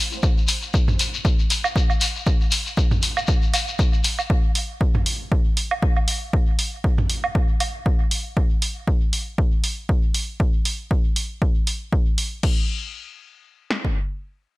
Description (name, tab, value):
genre	dub techno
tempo	118 BPM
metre	4/4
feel	swing 56% on 16ths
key	none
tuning	none
part	shekere	percussion	0.1-4.3 s	none	-26 LUFS	left 4 dB	none
part	punchy analog drum machine	drums	0.2-14.0 s	kick drum, snare drum	-20 LUFS	equal	none
part	punchy analog drum machine	drums	0.5-12.5 s	crash cymbal, hi-hat	-26 LUFS	right 1 dB	none
part	electronic toms and woodblock	percussion	0.9-7.7 s	none	-28 LUFS	right 3 dB	sidechain pumping on toms, sidechain pumping on perc, dub echo
room	little or no reverb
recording	bright 1980s-style digital production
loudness	-19 LUFS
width	side -20 dB against mid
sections	0.0-12.4 A section; 12.4-14.6 B section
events	none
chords	none